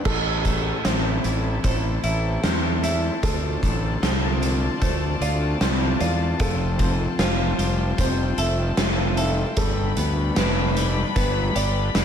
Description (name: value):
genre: post-rock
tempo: 76 BPM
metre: 4/4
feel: straight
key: A minor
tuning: A4 = 441 Hz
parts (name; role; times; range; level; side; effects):
- clear studio string section; sustained chords; 0.0-12.0 s; D4 to B5; -30 LUFS; left 3 dB; none
- felt-muted upright piano; arpeggios; 0.0-12.0 s; A4 to E5; -32 LUFS; right 4 dB; analog delay
- twelve-string electric guitar; arpeggios; 0.0-12.0 s; G2 to A4; -29 LUFS; left 4 dB; analog delay
- fuzz fingered electric bass; bass; 0.1-12.0 s; F1 to E2; -24 LUFS; equal; overdrive
- oversized low-tuned drum kit; drums; 0.1-12.0 s; crash cymbal, hi-hat, kick drum, snare drum; -24 LUFS; right 1 dB; none
room: light reverb, small room ambience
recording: none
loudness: -20 LUFS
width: side -8 dB against mid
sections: 0.1-12.0 A section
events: none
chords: 0.1 Am; 3.2 Dm7; 6.4 Fadd9; 9.6 G